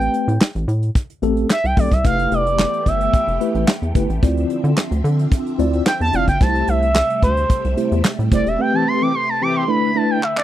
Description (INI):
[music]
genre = early-eighties boogie funk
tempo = 110 BPM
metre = 4/4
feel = straight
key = A minor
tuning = A4 = 440 Hz
[part]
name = expressive synth lead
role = melody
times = 0.0-10.4 s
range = C5 to D6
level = -19 LUFS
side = right 1 dB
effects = chorus, slapback echo
[part]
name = mellow tine electric piano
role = accompaniment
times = 0.0-10.2 s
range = A3 to D5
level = -21 LUFS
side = left 1 dB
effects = medium stereo tremolo
[part]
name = rubbery square bass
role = bass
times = 0.0-8.6 s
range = E1 to D3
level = -20 LUFS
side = equal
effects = none
[part]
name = soft brush drum kit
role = drums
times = 0.0-10.4 s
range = handclaps, hi-hat, kick drum, snare drum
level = -16 LUFS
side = equal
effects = none
[part]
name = phased string machine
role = sustained chords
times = 2.0-10.4 s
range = C3 to E5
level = -27 LUFS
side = equal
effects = ensemble chorus, phaser
[part]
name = mellow synth brass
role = second line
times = 8.7-9.6 s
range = E3 to G4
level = -21 LUFS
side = left 1 dB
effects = chorus
[sound]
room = light reverb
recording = dry, close 1970s-style studio recording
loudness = -15 LUFS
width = side -12 dB against mid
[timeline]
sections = 0.0-10.4 A section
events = analog synth lead solo 0.0-10.4; band accent 8.6-10.4; drum fill 10.2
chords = 0.0 Am9; 2.0 Fmaj9#11; 4.2 Dm9; 6.4 C6; 8.6 Am9; 9.7 E7sus4